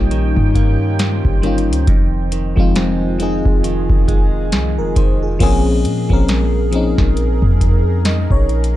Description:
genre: contemporary R&B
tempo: 68 BPM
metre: 4/4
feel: swing 58% on 16ths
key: Bb minor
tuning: A4 = 441 Hz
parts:
  - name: FM electric piano with soft pad layer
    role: accompaniment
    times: 0.0-8.8 s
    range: F3 to Eb5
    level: -20 LUFS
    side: left 2 dB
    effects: chorus
  - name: deep dark ambient pad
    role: sustained chords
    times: 0.0-8.8 s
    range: Eb4 to Bb5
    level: -26 LUFS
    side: equal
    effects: chorus, built-in reverb
  - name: direct-recorded clean electric guitar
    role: arpeggios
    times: 0.0-6.0 s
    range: F2 to Db4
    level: -24 LUFS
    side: right 5 dB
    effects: tape echo
  - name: clean 808-style bass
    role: bass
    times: 0.0-8.8 s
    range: F1 to Bb2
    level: -17 LUFS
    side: equal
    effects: none
  - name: booming analog drum machine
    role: drums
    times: 0.1-8.8 s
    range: crash cymbal, hi-hat, kick drum, snare drum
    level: -17 LUFS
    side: equal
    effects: none
room: little or no reverb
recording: dark, warm production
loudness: -13 LUFS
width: side -14 dB against mid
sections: 0.0-5.4 A section; 5.4-8.8 A section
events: none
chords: 0.0 Eb7; 1.9 Fm7; 5.4 Bbm7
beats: 0.11 0.99 | 1.87 2.76 3.64 4.52 | 5.40 6.29 7.17 8.05

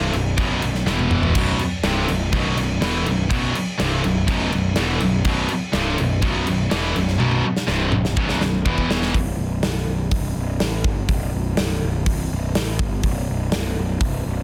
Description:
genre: heavy metal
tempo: 123 BPM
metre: 4/4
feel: straight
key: unclear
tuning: A4 = 440 Hz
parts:
  - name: heavy high-gain guitar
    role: riff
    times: 0.0-9.1 s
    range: B1 to E3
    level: -27 LUFS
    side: equal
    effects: distortion
  - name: high-gain distorted guitar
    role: riff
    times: 0.0-9.1 s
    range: B1 to E3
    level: -29 LUFS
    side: equal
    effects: distortion
  - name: tight distorted guitar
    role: riff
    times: 0.0-9.1 s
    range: B1 to E3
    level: -29 LUFS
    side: equal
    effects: distortion
  - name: fuzz picked electric bass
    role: bass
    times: 0.0-14.4 s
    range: B0 to A1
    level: -26 LUFS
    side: equal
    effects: overdrive
  - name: big rock drum kit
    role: drums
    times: 0.1-14.1 s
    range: crash cymbal, hi-hat, kick drum, snare drum, toms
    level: -26 LUFS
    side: equal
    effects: none
room: little or no reverb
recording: dense, heavily limited modern master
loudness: -21 LUFS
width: mono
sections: 0.0-9.1 A section; 9.1-14.4 B section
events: drum fill 0.9-1.4, 7.2-9.1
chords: 0.0 B5; 0.9 E5; 1.4 B5; 8.7 E5; 9.1 N.C.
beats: 0.38 0.87 | 1.35 1.84 2.33 2.82 | 3.30 3.79 4.28 4.76 | 5.25 5.74 6.22 6.71 | 7.20 7.68 8.17 8.66 | 9.14 9.63 10.12 10.60 | 11.09 11.58 12.06 12.55 | 13.04 13.52 14.01

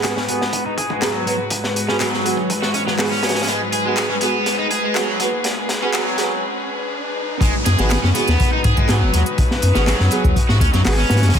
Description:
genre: breakbeat, breaks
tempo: 122 BPM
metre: 4/4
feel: straight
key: G# minor pentatonic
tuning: A4 = 441 Hz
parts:
  - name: rich chamber string section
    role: sustained chords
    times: 0.0-11.4 s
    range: G#2 to C#5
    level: -25 LUFS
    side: left 3 dB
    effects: sidechain pumping, low-pass filter
  - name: overdriven semi-hollow guitar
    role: riff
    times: 0.0-11.4 s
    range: F#3 to G#4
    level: -22 LUFS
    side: right 1 dB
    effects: tube saturation, low-pass filter, dub echo
  - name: mellow brass ensemble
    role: stabs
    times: 0.0-11.2 s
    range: B3 to B4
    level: -25 LUFS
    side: right 4 dB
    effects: low-pass filter, dub echo
  - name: crunchy breakbeat drum kit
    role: drums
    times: 0.0-11.4 s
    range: hi-hat, kick drum, snare drum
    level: -21 LUFS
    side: equal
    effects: high-pass filter on kick, high-pass filter on hats, high-pass filter on snare, high-pass filter on room
  - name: house drum kit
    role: drums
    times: 0.0-11.4 s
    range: handclaps, hi-hat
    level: -28 LUFS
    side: left 1 dB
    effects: none
  - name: riser and downlifter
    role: sound effects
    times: 1.0-11.3 s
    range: none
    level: -30 LUFS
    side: equal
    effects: none
  - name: saturated sub bass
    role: bass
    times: 7.4-11.4 s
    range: F#1 to G#2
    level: -17 LUFS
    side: left 1 dB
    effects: none
room: light reverb, small room ambience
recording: dense, heavily limited modern master, high-pass filter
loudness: -16 LUFS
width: side -8 dB against mid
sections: 0.0-7.4 A section; 7.4-11.4 B section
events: build-up 0.0-7.4; filter sweep on overdriven electric guitar 0.0-7.4; filter sweep on string section 0.0-7.4; riser 1.0-7.4; drum fill 3.5-6.4; break 6.4-7.4; drop 7.4-11.4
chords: 0.0 G#m7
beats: 0.04 0.53 1.02 | 1.51 2.00 2.50 2.99 | 3.48 3.97 4.46 4.96 | 5.45 5.94 6.43 6.92 | 7.42 7.91 8.40 8.89 | 9.38 9.87 10.37 10.86 | 11.35

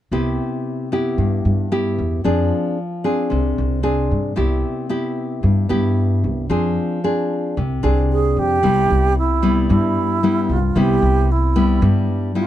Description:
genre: bossa nova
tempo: 113 BPM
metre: 4/4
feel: straight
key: C major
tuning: A4 = 440 Hz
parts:
  - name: nylon-string guitar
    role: accompaniment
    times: 0.1-12.5 s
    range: G2 to Ab4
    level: -19 LUFS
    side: left 1 dB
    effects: none
  - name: upright bass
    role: bass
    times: 0.1-12.1 s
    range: C2 to G2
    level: -19 LUFS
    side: equal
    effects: none
  - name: bright alto flute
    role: melody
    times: 8.1-12.5 s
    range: E4 to Ab4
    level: -19 LUFS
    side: right 3 dB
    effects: none
room: little or no reverb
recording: close, detailed microphones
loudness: -16 LUFS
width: side -12 dB against mid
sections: 0.1-8.6 A section; 8.6-12.5 B section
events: none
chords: 0.1 Cmaj7; 2.2 Fm6; 4.4 Cmaj7; 6.5 Fm6; 8.6 Cmaj7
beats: | 0.12 0.65 1.18 1.71 | 2.25 2.78 3.31 3.84 | 4.38 4.91 5.44 5.97 | 6.50 7.04 7.57 8.10 | 8.63 9.16 9.69 10.22 | 10.76 11.29 11.82 12.35

